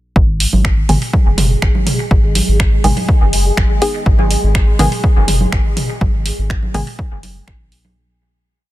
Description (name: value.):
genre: dub techno.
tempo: 123 BPM.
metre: 4/4.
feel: straight.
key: G# minor.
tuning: A4 = 438 Hz.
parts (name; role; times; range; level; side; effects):
soft dub sub bass; bass; 0.2-7.6 s; F#1 to G#1; -16 LUFS; equal; sidechain pumping.
electronic kick drum; drums; 0.2-7.6 s; none; -14 LUFS; equal; overdrive.
bubbling stepped-filter texture; texture; 0.2-8.0 s; G#3 to G#4; -25 LUFS; left 1 dB; chorus, built-in reverb, sidechain pumping.
deep house drum kit; drums; 0.4-7.8 s; finger snaps, hi-hat; -22 LUFS; right 1 dB; overdrive, soft clipping on snare, dub echo.
electronic congas and toms; percussion; 0.5-7.9 s; none; -22 LUFS; right 2 dB; overdrive, sidechain pumping on perc, sidechain pumping on toms.
filtered dub chord stab; stabs; 0.9-6.8 s; D#3 to G#4; -21 LUFS; equal; chorus, phaser, sidechain pumping, dub echo.
room: digital ambience.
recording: dense, heavily limited modern master.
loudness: -12 LUFS.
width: side -16 dB against mid.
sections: 0.2-8.0 groove.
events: filter sweep on synth stab 0.2-8.0; fade-out 5.4-8.0.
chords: 0.2 G#m.